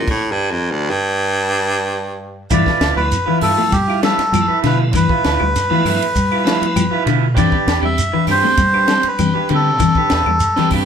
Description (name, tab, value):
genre	afrobeat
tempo	99 BPM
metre	4/4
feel	straight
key	G mixolydian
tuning	A4 = 440 Hz
part	edgy baritone saxophone	melody	0.0-2.5 s	D2 to A2	-17 LUFS	right 1 dB	none
part	tonewheel organ	accompaniment	0.0-10.9 s	F3 to E4	-25 LUFS	right 2 dB	slow rotary speaker
part	compact cocktail drum kit	drums	0.1-10.9 s	crash cymbal, hi-hat, kick drum, ride cymbal, snare drum	-22 LUFS	equal	none
part	melodica	melody	2.5-10.7 s	G4 to E5	-17 LUFS	equal	none
part	clean electric guitar	arpeggios	2.5-10.8 s	D3 to A3	-20 LUFS	left 7 dB	none
part	electric guitar through a small old amp	stabs	2.5-10.9 s	A3 to B4	-22 LUFS	right 8 dB	none
part	deep dub fingered electric bass	bass	2.5-10.8 s	D2 to G3	-21 LUFS	equal	none
part	claves	percussion	2.5-10.9 s	none	-32 LUFS	left 4 dB	none
part	shekere	percussion	2.5-10.9 s	none	-24 LUFS	right 2 dB	none
room	moderate large studio reverb, RT60 0.9 s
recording	band playing live in one room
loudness	-13 LUFS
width	side -7 dB against mid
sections	0.0-2.5 A section; 2.5-10.9 B section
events	baritone saxophone solo 0.0-2.5; stop 0.1-2.5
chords	0.0 N.C.; 2.5 G13; 7.4 Am11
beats	| 0.07 0.68 1.29 1.90 | 2.51 3.11 3.72 4.33 | 4.93 5.54 6.15 6.76 | 7.37 7.97 8.58 9.19 | 9.80 10.41